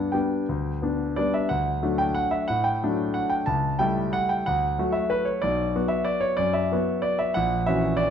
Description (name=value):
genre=classical, piano waltz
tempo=164-194 BPM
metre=3/4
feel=rubato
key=D major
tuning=A4 = 437 Hz
part: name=clear concert grand piano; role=solo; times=0.0-8.1 s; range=A#1 to A5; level=-22 LUFS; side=equal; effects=none
room=moderate recital hall reverb, RT60 1.3 s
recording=dark, warm production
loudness=-22 LUFS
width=side -8 dB against mid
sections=0.0-1.5 A section; 1.5-8.1 B section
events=none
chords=0.0 G; 1.5 D; 3.5 A7/C#; 4.5 D; 5.4 Bm; 7.4 F#7/A#